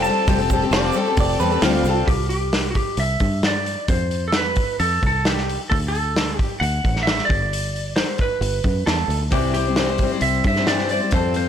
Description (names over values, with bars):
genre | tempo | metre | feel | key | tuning
folk rock and heartland rock | 132 BPM | 4/4 | straight | unclear | A4 = 441 Hz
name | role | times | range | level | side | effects
clean lap steel guitar | melody | 0.0-11.5 s | F#4 to A5 | -24 LUFS | right 2 dB | none
picked steel-string acoustic guitar | accompaniment | 0.0-2.1, 9.3-11.5 s | C3 to C5 | -21 LUFS | left 6 dB | none
muted chamber string section | sustained chords | 0.0-2.0 s | G3 to A4 | -33 LUFS | left 1 dB | none
fingered electric bass | bass | 0.0-11.5 s | F1 to G2 | -24 LUFS | right 1 dB | none
tube shaker | percussion | 0.0-2.0 s | none | -41 LUFS | right 10 dB | none
loose indie drum kit | drums | 0.3-11.5 s | hi-hat, kick drum, snare drum | -22 LUFS | equal | none
twelve-string electric guitar | second line | 0.7-2.0 s | F4 to D5 | -25 LUFS | right 6 dB | spring reverb, tape echo
room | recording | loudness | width
light reverb | blown-out, overdriven recording, overdrive | -18 LUFS | side -9 dB against mid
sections
0.0-2.1 A section; 2.1-11.5 B section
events
none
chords
0.0 Fadd9; 2.1 C; 3.9 F5; 5.7 D; 7.3 G; 9.3 C